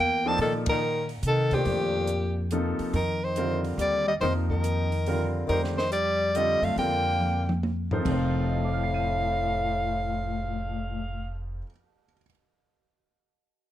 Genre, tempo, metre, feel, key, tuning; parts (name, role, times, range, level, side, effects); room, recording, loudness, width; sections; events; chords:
modal jazz; 141 BPM; 3/4; swing 67% on 8ths; A4 = 440 Hz
clear soprano saxophone; melody; 0.0-11.4 s; G4 to A5; -28 LUFS; right 1 dB
breathy tenor saxophone; second line; 0.0-11.4 s; A2 to C4; -32 LUFS; left 6 dB
upright bass; bass; 0.0-11.6 s; F1 to C3; -30 LUFS; equal
clear grand piano; accompaniment; 0.3-12.3 s; F2 to Eb7; -32 LUFS; equal
compact cocktail drum kit; drums; 0.4-10.5 s; crash cymbal, cymbal swell, hi-hat, kick drum, ride cymbal, snare drum, toms; -35 LUFS; equal
light reverb; close, detailed microphones; -24 LUFS; side -12 dB against mid
0.0-2.9 A section; 2.9-8.1 B section; 8.1-10.6 C section
band accent 0.6; drum fill 7.2-8.1
0.0 Eb; 8.1 F